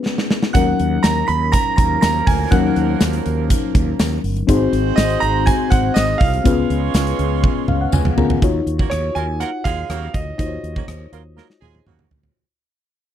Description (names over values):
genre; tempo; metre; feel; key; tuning
1980s-style pop; 122 BPM; 4/4; straight; Eb minor; A4 = 440 Hz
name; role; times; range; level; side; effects
mellow FM electric piano; accompaniment; 0.0-12.4 s; Gb3 to Bb5; -21 LUFS; left 7 dB; chorus
gated 80s drum kit; drums; 0.1-12.3 s; hi-hat, kick drum, rim click, snare drum, tambourine, toms; -18 LUFS; right 1 dB; none
clear concert grand piano; melody; 0.5-11.8 s; Db5 to Cb6; -22 LUFS; right 4 dB; tape echo
glassy synth bell; second line; 0.5-8.1 s; Eb6 to Cb7; -29 LUFS; equal; chorus, tremolo, tape echo
mellow fretless electric bass; bass; 0.5-12.3 s; G1 to Eb2; -21 LUFS; right 1 dB; none
tambourine; percussion; 1.0-8.0 s; none; -36 LUFS; left 18 dB; none
clear horn section; stabs; 1.5-12.1 s; Db3 to Db5; -27 LUFS; right 17 dB; none
room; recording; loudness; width
little or no reverb; none; -15 LUFS; side -10 dB against mid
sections
0.0-8.4 A section; 8.4-12.4 B section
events
drum fill 0.1-0.6, 7.4-8.4, 11.4-12.4; FM electric piano fill 7.4-8.4; fade-out 8.4-12.4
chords
0.0 Db7; 0.6 Ebm9; 4.5 Ab7; 6.5 Db7; 8.4 Ebm9